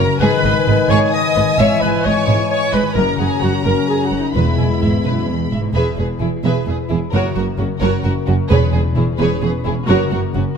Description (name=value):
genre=cinematic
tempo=130 BPM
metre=3/4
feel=straight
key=E lydian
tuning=A4 = 444 Hz
part: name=warm symphonic violin section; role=melody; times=0.0-10.4 s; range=F#4 to E6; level=-27 LUFS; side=left 3 dB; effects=none
part: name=dark clarinet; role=second line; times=0.0-5.3 s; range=D#4 to E5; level=-21 LUFS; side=left 2 dB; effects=none
part: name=warm symphonic violin section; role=second line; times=0.0-10.4 s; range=C#4 to B5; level=-24 LUFS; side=left 2 dB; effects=none
part: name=warm symphonic viola section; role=accompaniment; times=0.0-10.4 s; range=D#4 to E5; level=-23 LUFS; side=right 2 dB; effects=none
part: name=mellow French horn section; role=sustained chords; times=0.0-5.5 s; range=D#3 to D#5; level=-21 LUFS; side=left 5 dB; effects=none
part: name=concert harp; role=arpeggios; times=0.0-10.6 s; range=E2 to E5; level=-23 LUFS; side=left 9 dB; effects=none
part: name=dark symphonic cello section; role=bass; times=0.0-10.4 s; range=E2 to G#2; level=-20 LUFS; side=right 3 dB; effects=none
part: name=rich symphonic double bass section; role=bass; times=0.0-10.4 s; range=E1 to G#1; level=-21 LUFS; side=right 4 dB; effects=none
part: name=timpani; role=percussion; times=4.4-5.0, 8.5-9.2 s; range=E2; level=-22 LUFS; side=equal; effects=none
room=moderate scoring stage reverb, RT60 1.6 s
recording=none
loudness=-14 LUFS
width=side -6 dB against mid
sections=0.0-5.8 A section; 5.8-10.6 B section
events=none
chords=0.2 G#m; 1.6 C#madd9/G#; 3.0 F#; 4.4 E; 7.1 F#; 8.5 C#m7/E; 9.9 F#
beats=| 0.21 0.67 1.12 | 1.58 2.04 2.50 | 2.96 3.43 3.89 | 4.36 4.82 5.29 | 5.76 6.22 6.68 | 7.13 7.59 8.05 | 8.51 8.97 9.43 | 9.89 10.36